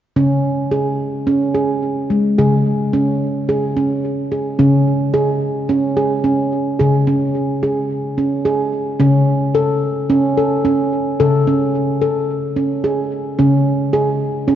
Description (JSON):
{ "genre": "world meditative, meditative tuned percussion", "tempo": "109 BPM", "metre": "4/4", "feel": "swing 54% on 16ths", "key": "unclear", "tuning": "A4 = 440 Hz", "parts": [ { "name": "handpan", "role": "solo", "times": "0.2-14.6 s", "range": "C#3 to A4", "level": "-14 LUFS", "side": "equal", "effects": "ping-pong delay" } ], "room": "wet church reverb, RT60 3.5 s", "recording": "worn, warbling old tape, cassette tape, warbly pitch drift, nothing above 7.5 kHz", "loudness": "-14 LUFS", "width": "side -10 dB against mid", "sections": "0.2-4.6 A section; 4.6-14.6 B section", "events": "none", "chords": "0.2 C#5; 9.0 A/C#; 13.4 C#5" }